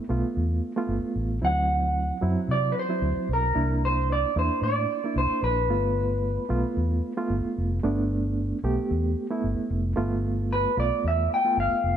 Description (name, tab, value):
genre	straight-eighth soul blues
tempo	112 BPM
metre	4/4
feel	swing 54% on 16ths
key	G mixolydian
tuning	A4 = 437 Hz
part	reed electric piano	accompaniment	0.0-12.0 s	F#3 to G4	-29 LUFS	right 3 dB	overdrive, fast tremolo
part	vintage muted fingered electric bass	bass	0.1-12.0 s	F1 to C3	-26 LUFS	equal	none
part	electric guitar through a small old amp	melody	1.4-12.0 s	Bb4 to G5	-26 LUFS	equal	none
room	light reverb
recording	none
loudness	-23 LUFS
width	side -9 dB against mid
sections	0.0-10.0 A section; 10.0-12.0 B section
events	clean electric guitar solo 10.0-12.0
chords	0.0 G9 (rootless); 1.4 D9; 3.6 C9; 5.7 G9